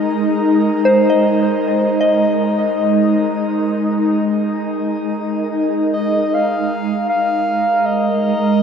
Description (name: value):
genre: ambient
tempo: 77 BPM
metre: 4/4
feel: straight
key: Ab major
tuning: A4 = 440 Hz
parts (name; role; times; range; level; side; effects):
- ethereal airy pad; sustained chords; 0.0-8.6 s; Ab3 to Eb5; -16 LUFS; right 1 dB; ensemble chorus, built-in reverb, phaser, shimmer reverb
- soft synth bell; arpeggios; 0.0-6.3 s; Bb4 to Eb5; -18 LUFS; left 1 dB; chorus, shimmer reverb, analog delay
- analog drone; drone; 0.2-6.4 s; Ab3; -34 LUFS; right 1 dB; none
- glass harmonica; texture; 0.0-8.6 s; Bb5; -30 LUFS; right 1 dB; shimmer reverb
- dark clarinet; melody; 5.9-8.6 s; Eb5 to F5; -17 LUFS; left 1 dB; shimmer reverb, analog delay
room: wet lush hall reverb, RT60 2.8 s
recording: dreamy mix soaked in reverb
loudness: -14 LUFS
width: side -7 dB against mid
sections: 0.0-6.3 A section; 6.3-8.6 B section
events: fade-out on glass harmonica 0.0-6.3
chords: 0.0 Abadd9; 6.3 Absus2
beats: | 0.10 0.86 1.64 2.41 | 3.18 3.96 4.74 5.54 | 6.33 7.11 7.88